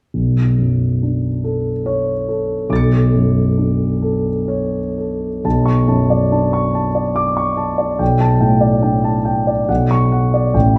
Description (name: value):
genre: classical, impressionist solo piano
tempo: 58-73 BPM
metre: 3/4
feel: rubato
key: B minor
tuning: A4 = 439 Hz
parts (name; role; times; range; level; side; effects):
- warm concert grand piano; solo; 0.1-10.8 s; A1 to C#7; -16 LUFS; equal; none
room: wet recital hall reverb, RT60 1.4 s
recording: none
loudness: -17 LUFS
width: mono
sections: 0.1-5.5 A section; 5.5-10.8 B section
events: none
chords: 0.1 Bm9; 8.0 A9sus4/B; 9.7 Bmadd9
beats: | 0.14 1.02 1.86 | 2.70 3.56 4.47 | 5.45 6.31 7.17 | 8.01 8.83 9.69 | 10.55